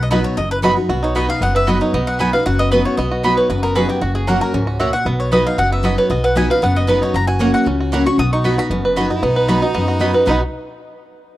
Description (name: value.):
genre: bluegrass.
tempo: 230 BPM.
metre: 4/4.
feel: straight.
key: B major.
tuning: A4 = 440 Hz.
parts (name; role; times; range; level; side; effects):
mandolin; melody; 0.0-10.4 s; F#4 to D#6; -22 LUFS; left 1 dB; none.
picked steel-string acoustic guitar; accompaniment; 0.0-10.4 s; F#2 to F#4; -19 LUFS; left 1 dB; none.
upright bass; bass; 0.0-10.4 s; F#1 to F#2; -21 LUFS; equal; none.
bluegrass banjo; arpeggios; 0.1-10.4 s; B3 to B4; -19 LUFS; right 2 dB; none.
mandolin; stabs; 0.1-10.4 s; A#3 to B5; -23 LUFS; right 3 dB; none.
clear fiddle; second line; 9.2-10.4 s; D#4 to E4; -26 LUFS; left 1 dB; none.
room: small room reverb.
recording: dry, close 1970s-style studio recording.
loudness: -14 LUFS.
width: side -15 dB against mid.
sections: 0.9-9.2 A section; 9.2-10.3 B section; 10.3-11.3 C section.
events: none.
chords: 0.0 B; 4.0 F#; 5.1 B; 7.1 F#; 8.2 B.